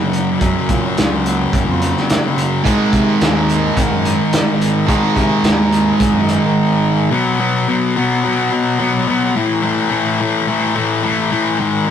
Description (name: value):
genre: quiet-loud alternative rock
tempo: 107 BPM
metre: 4/4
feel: straight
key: unclear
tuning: A4 = 440 Hz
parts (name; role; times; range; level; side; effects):
- clean electric guitar; arpeggios; 0.0-2.7 s; Gb2 to Db4; -25 LUFS; right 8 dB; none
- thick fuzz guitar; riff; 0.0-11.9 s; Gb2 to Cb4; -15 LUFS; left 3 dB; distortion
- loose indie drum kit; drums; 0.1-6.4 s; hi-hat, kick drum, snare drum; -19 LUFS; equal; none
- fuzz fingered electric bass; bass; 0.4-6.4 s; Db2 to C3; -22 LUFS; equal; overdrive
- distorted electric guitar; riff; 2.6-7.1 s; Ab2 to Ab3; -17 LUFS; right 7 dB; overdrive
room: moderate stone room reverb, RT60 1.2 s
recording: rough rehearsal-room recording, warm saturation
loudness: -13 LUFS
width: side -8 dB against mid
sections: 0.0-7.1 A section; 7.1-11.9 B section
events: none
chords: 0.0 Gb; 2.6 Ab5; 7.1 Cb5; 9.4 A5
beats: | 0.41 0.97 1.53 2.09 | 2.65 3.21 3.77 4.33 | 4.89 5.45 6.01 6.57 | 7.12 7.68 8.24 8.80 | 9.36 9.92 10.48 11.04 | 11.59